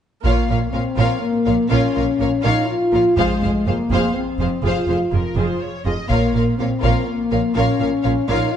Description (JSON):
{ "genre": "cinematic, epic orchestral film score", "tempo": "123 BPM", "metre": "3/4", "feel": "straight", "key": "unclear", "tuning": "A4 = 440 Hz", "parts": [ { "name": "dark symphonic viola section", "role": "accompaniment", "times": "0.2-8.5 s", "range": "F4 to Bb4", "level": "-26 LUFS", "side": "right 2 dB", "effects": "none" }, { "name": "mellow French horn section", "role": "sustained chords", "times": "0.2-8.6 s", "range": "Ab3 to F4", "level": "-20 LUFS", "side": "left 3 dB", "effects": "none" }, { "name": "dark symphonic double bass section", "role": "bass", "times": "0.2-8.4 s", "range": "F1 to Bb1", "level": "-23 LUFS", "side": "right 3 dB", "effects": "none" }, { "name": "rich symphonic cello section", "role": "bass", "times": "0.2-8.4 s", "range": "F2 to Bb2", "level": "-25 LUFS", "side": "right 3 dB", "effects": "none" }, { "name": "taiko ensemble", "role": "drums", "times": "0.2-7.1 s", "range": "none", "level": "-24 LUFS", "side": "equal", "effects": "none" }, { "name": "warm symphonic violin section", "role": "second line", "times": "0.3-8.5 s", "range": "Bb4 to F5", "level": "-25 LUFS", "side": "left 4 dB", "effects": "none" } ], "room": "moderate scoring stage reverb, RT60 1.5 s", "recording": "nothing above 10.3 kHz", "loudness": "-16 LUFS", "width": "side -9 dB against mid", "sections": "0.2-8.6 A section", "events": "none", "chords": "0.2 Bbm; 3.2 Fm; 6.1 Bbm" }